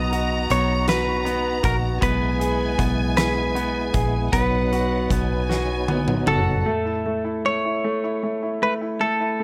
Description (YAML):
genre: six-eight pop ballad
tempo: 52 BPM (dotted quarters)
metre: 6/8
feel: straight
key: unclear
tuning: A4 = 441 Hz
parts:
  - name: direct-recorded clean electric guitar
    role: melody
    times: 0.0-9.4 s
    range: A4 to D#5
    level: -27 LUFS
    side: equal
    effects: tape echo
  - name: clear studio violin section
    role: second line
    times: 0.0-6.6 s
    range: F#5 to A#5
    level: -34 LUFS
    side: equal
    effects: none
  - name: bright grand piano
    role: accompaniment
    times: 0.0-9.4 s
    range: A3 to G#4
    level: -28 LUFS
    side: equal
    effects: none
  - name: percussive tonewheel organ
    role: sustained chords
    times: 0.0-6.6 s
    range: F#3 to F#4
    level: -32 LUFS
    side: equal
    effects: overdrive, chorus vibrato, slow rotary speaker
  - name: vintage muted fingered electric bass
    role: bass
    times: 0.0-6.6 s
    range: F#1 to B1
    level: -28 LUFS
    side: equal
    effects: none
  - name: huge arena drum kit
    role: drums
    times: 0.1-6.5 s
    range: hi-hat, kick drum, snare drum, toms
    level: -29 LUFS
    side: equal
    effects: none
room: light reverb, small room ambience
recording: none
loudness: -22 LUFS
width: mono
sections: 0.0-6.7 A section; 6.7-9.4 B section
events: drum fill 5.5-6.7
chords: 0.0 B; 2.0 E/B; 4.3 B; 6.7 A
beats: 0.88 | 2.02 3.17 | 4.33 5.49 | 6.66 7.84 | 9.01